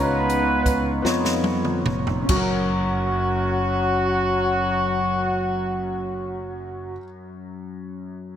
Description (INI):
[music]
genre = slow gospel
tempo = 45-56 BPM (dotted quarters)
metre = 6/8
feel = straight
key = F# major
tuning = A4 = 440 Hz
[part]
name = dark horn section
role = melody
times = 0.0-7.0 s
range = F#3 to B4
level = -24 LUFS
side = equal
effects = none
[part]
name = warm grand piano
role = accompaniment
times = 0.0-8.4 s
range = F#2 to A#5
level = -26 LUFS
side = left 2 dB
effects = lush chorus
[part]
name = modern bright fingered electric bass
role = bass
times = 0.0-7.0 s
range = E#1 to E#2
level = -28 LUFS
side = right 1 dB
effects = none
[part]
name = swinging big-band drum kit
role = drums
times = 0.3-2.5 s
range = crash cymbal, hi-hat, kick drum, snare drum, toms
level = -26 LUFS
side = right 1 dB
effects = none
[sound]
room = light reverb, studio reverb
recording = bright 1980s-style digital production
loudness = -20 LUFS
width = side -9 dB against mid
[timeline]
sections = 0.0-2.3 A section; 2.3-7.7 B section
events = slowing down 0.0-2.3; drum fill 1.0-2.3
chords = 0.0 C#13; 2.3 F#